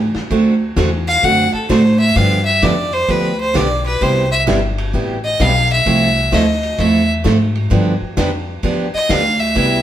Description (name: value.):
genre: country, western swing.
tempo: 130 BPM.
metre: 4/4.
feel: swing 66% on 8ths.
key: unclear.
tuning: A4 = 440 Hz.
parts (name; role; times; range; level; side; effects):
upright bass; bass; 0.0-9.8 s; G1 to A2; -18 LUFS; left 1 dB; none.
vintage drum kit; drums; 0.1-9.7 s; hi-hat, kick drum, ride cymbal, snare drum; -25 LUFS; left 1 dB; none.
picked steel-string acoustic guitar; accompaniment; 0.3-9.8 s; C3 to A4; -17 LUFS; right 2 dB; none.
clear fiddle; melody; 1.1-9.8 s; A4 to F#5; -16 LUFS; equal; none.
room: wet stone room reverb, RT60 1.1 s.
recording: band playing live in one room.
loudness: -13 LUFS.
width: side -11 dB against mid.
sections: 0.0-9.8 A section.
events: fiddle solo 0.0-9.8.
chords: 0.3 D7; 2.2 G7; 4.0 Cmaj7; 5.9 Fmaj7; 7.7 G7.